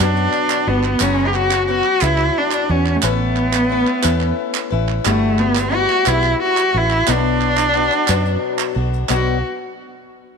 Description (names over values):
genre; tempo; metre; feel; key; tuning
indie folk with a building arrangement; 59 BPM (dotted quarters); 6/8; straight; B minor; A4 = 445 Hz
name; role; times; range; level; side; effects
warm cello; melody; 0.0-9.4 s; A3 to G4; -18 LUFS; right 1 dB; none
picked swing-style acoustic guitar; accompaniment; 0.0-9.4 s; F#2 to B4; -22 LUFS; left 11 dB; none
fingered electric bass; bass; 0.0-9.4 s; F#1 to F#2; -20 LUFS; right 2 dB; none
egg shaker; percussion; 0.2-9.4 s; none; -33 LUFS; left 17 dB; none
group handclap; percussion; 0.3-9.4 s; none; -25 LUFS; right 17 dB; none
room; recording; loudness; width
light reverb, small room ambience; 1960s-style stereo with parts hard left and right; -15 LUFS; side -5 dB against mid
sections
0.0-9.1 A section; 9.1-10.4 B section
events
none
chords
0.0 Bm; 1.0 F#sus4; 3.0 Aadd9; 5.1 Emadd9/G; 7.1 Bm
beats
0.00 | 1.01 2.02 | 3.03 4.04 | 5.05 6.07 | 7.08 8.09 | 9.10